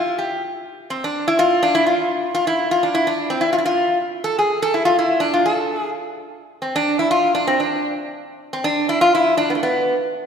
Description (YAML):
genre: klezmer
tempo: 126 BPM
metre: 2/4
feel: straight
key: D dorian sharp4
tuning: A4 = 441 Hz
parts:
  - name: metal-body resonator slide guitar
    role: solo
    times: 0.0-9.9 s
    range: A3 to A4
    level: -17 LUFS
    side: equal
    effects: none
room: wet concert hall reverb, RT60 2.0 s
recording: recorded in a church or concert hall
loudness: -16 LUFS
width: side -7 dB against mid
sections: 0.4-8.1 A section; 8.1-10.3 A section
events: none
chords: none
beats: | 0.44 0.92 | 1.39 1.87 | 2.34 2.82 | 3.30 3.77 | 4.25 4.72 | 5.20 5.68 | 6.15 6.63 | 7.10 7.58 | 8.06 8.53 | 9.01 9.48